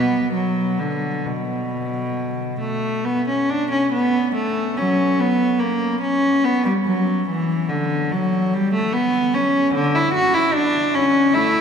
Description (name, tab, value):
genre	classical, baroque-style suite movement for unaccompanied cello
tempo	65-76 BPM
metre	4/4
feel	rubato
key	B minor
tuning	A4 = 441 Hz
part	rich cello	solo	0.0-11.6 s	B2 to F#4	-17 LUFS	equal	none
room	wet cathedral reverb, RT60 6.1 s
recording	recorded in a church or concert hall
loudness	-17 LUFS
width	side -7 dB against mid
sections	0.0-3.0 A section; 3.0-11.6 B section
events	none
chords	none